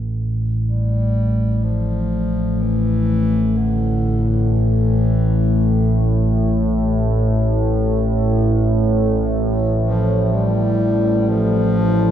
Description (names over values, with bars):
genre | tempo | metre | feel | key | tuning
ambient | free time | none | none | unclear | A4 = 440 Hz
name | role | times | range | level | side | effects
analog drone | drone | 0.0-12.1 s | A1 to A2 | -16 LUFS | equal | chorus
dark bass clarinet | melody | 0.6-12.1 s | D3 to G3 | -24 LUFS | equal | ping-pong delay
room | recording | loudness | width
wet cathedral reverb, RT60 5.0 s | cassette tape | -15 LUFS | side -10 dB against mid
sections
0.0-12.1 A section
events
fade-in on bass clarinet 0.0-12.1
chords
none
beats
free time